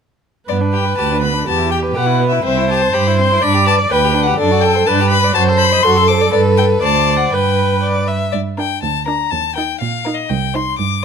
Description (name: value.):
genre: quick classical-period movement for string quartet.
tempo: 122 BPM.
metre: 2/4.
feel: straight.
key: G major.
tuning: A4 = 441 Hz.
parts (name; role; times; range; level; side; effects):
clear violin; melody; 0.5-11.0 s; D5 to D6; -18 LUFS; left 8 dB; none.
clear violin; second line; 0.5-10.7 s; B3 to E5; -20 LUFS; left 4 dB; none.
clear viola; accompaniment; 0.5-10.7 s; D4 to D5; -17 LUFS; right 2 dB; none.
warm cello; bass; 0.5-11.0 s; C2 to B2; -18 LUFS; right 5 dB; none.
room: light reverb.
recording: close, detailed microphones.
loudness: -12 LUFS.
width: side -6 dB against mid.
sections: 0.5-8.3 A section; 8.3-11.0 B section.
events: none.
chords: 0.5 G; 1.5 Em; 2.4 C; 3.4 G; 4.4 D7/F#; 4.9 G; 5.4 F#dim7; 5.8 D7/F#; 6.3 G; 6.8 D5; 7.3 G; 8.3 Gm; 9.3 Eb5; 10.3 Cm.